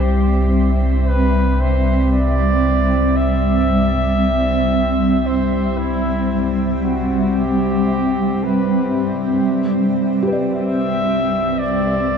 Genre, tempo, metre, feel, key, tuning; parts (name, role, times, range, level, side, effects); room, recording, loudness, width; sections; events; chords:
ambient; 57 BPM; 4/4; straight; C major; A4 = 440 Hz
mellow flugelhorn; melody; 0.0-12.2 s; E4 to E5; -22 LUFS; equal; ping-pong delay
granular cloud pad; sustained chords; 0.0-12.2 s; G3 to E5; -18 LUFS; right 1 dB; built-in reverb
round analog bass; bass; 0.0-12.2 s; C2; -20 LUFS; equal
pedal harmonium; drone; 0.0-12.2 s; C3 to C4; -28 LUFS; left 1 dB
felt-muted upright piano; arpeggios; 10.2-12.2 s; G4 to D5; -25 LUFS; equal; ping-pong delay
wet huge ambient reverb, RT60 7.9 s; dark, warm production; -15 LUFS; side -7 dB against mid
0.0-12.2 A section
0.0 C; 9.4 G/C